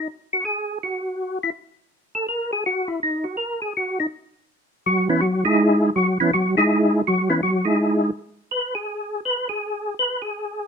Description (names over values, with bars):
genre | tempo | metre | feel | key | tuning
jazz | 164 BPM | 4/4 | swing 66% on 8ths | unclear | A4 = 443 Hz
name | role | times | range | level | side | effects
percussive tonewheel organ | solo | 0.0-10.7 s | E3 to B4 | -20 LUFS | equal | slow rotary speaker, chorus vibrato
room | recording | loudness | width
light reverb | minimal, uncompressed stereo recording | -20 LUFS | side -6 dB against mid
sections
0.0-10.7 A section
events
tonewheel organ solo 0.0-10.7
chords
0.0 N.C.; 4.5 C#m9; 8.9 N.C.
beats
| 0.07 0.44 0.80 1.17 | 1.53 1.90 2.27 2.63 | 3.00 3.37 3.73 4.10 | 4.47 4.83 5.20 5.57 | 5.93 6.30 6.67 7.03 | 7.40 7.77 8.13 8.50 | 8.87 9.24 9.60 9.97 | 10.34